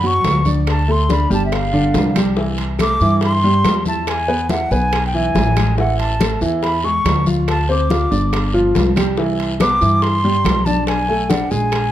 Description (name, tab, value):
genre	Afro-Cuban jazz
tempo	141 BPM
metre	4/4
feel	straight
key	unclear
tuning	A4 = 440 Hz
part	hollow concert flute	melody	0.0-11.9 s	E5 to D6	-19 LUFS	equal	none
part	clear baby grand piano	accompaniment	0.0-11.9 s	D3 to F5	-20 LUFS	equal	none
part	upright bass	bass	0.0-11.9 s	G1 to G2	-19 LUFS	equal	none
part	congas	percussion	0.0-11.9 s	none	-23 LUFS	left 2 dB	none
part	bongos	percussion	0.2-11.9 s	none	-28 LUFS	left 5 dB	none
part	claves	percussion	0.2-11.9 s	none	-34 LUFS	right 4 dB	none
part	guiro	percussion	0.2-11.9 s	none	-34 LUFS	left 4 dB	none
part	timbales	percussion	0.2-11.9 s	none	-27 LUFS	right 4 dB	none
room	light reverb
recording	dark, warm production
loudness	-14 LUFS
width	side -12 dB against mid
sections	0.0-11.9 A section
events	none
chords	0.0 Bmadd9 (rootless); 0.7 D5; 1.5 G5; 2.4 C6; 4.1 E; 5.8 Amaj7; 7.5 G5; 9.2 Cmaj7; 10.9 Bm7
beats	0.24 | 0.67 1.09 1.52 1.94 | 2.37 2.80 3.22 3.65 | 4.07 4.50 4.92 5.35 | 5.78 6.20 6.63 7.05 | 7.48 7.90 8.33 8.75 | 9.18 9.60 10.03 10.45 | 10.88 11.30 11.73